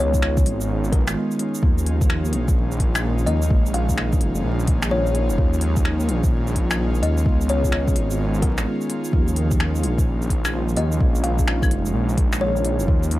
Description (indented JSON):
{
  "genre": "future garage",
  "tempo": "128 BPM",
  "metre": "4/4",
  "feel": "swing 64% on 16ths",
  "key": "unclear",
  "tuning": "A4 = 441 Hz",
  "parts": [
    { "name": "kalimba", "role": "melody", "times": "0.0-12.8 s", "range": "Bb4 to F5", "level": "-28 LUFS", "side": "left 3 dB", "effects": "analog delay" },
    { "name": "muted felt-like synth keys", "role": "accompaniment", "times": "0.0-13.2 s", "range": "F3 to F4", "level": "-28 LUFS", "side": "right 1 dB", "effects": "chorus, sidechain pumping, analog delay" },
    { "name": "airy breathy pad", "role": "sustained chords", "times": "0.0-13.2 s", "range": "Eb3 to F4", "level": "-29 LUFS", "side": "equal", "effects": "chorus, sidechain pumping" },
    { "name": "swelling detuned saw bass", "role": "bass", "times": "0.0-13.2 s", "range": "F1 to Eb2", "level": "-22 LUFS", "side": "equal", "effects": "sidechain pumping" },
    { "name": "electronic kick drum", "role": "drums", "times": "0.1-13.0 s", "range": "none", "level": "-20 LUFS", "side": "equal", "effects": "none" },
    { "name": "organic electronic drum kit", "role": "drums", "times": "0.1-13.2 s", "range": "claves, finger snaps, hi-hat, shaker", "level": "-28 LUFS", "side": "left 1 dB", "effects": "none" }
  ],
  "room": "light reverb",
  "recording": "vinyl crackle",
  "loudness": "-18 LUFS",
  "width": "side -16 dB against mid",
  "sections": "0.0-13.2 A section",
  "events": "none",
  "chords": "0.0 Db7; 1.6 Ebsus2; 3.5 Bbm7; 5.4 Ebsus2; 7.3 Db7; 9.1 Ebsus2; 11.0 Bbm7"
}